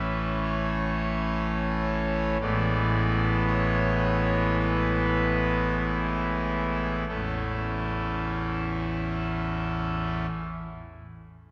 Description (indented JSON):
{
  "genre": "classical, chorale-style piece for pipe organ",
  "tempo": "45-63 BPM",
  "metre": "4/4",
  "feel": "rubato",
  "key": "A major",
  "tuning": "A4 = 440 Hz",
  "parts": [
    { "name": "pipe organ, trumpet", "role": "solo", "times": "0.0-10.3 s", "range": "A1 to D5", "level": "-27 LUFS", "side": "equal", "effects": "none" }
  ],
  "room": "wet church reverb, RT60 2.8 s",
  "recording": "heard from further back in the room",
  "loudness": "-27 LUFS",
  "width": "mono",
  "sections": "0.0-7.1 A section; 7.1-11.5 B section",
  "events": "slowing down 0.0-7.1",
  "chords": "0.0 A; 2.4 E7/A; 7.1 A",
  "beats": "0.43 1.41 | 2.42 3.47 4.58 5.79 | 7.09 8.38 9.67"
}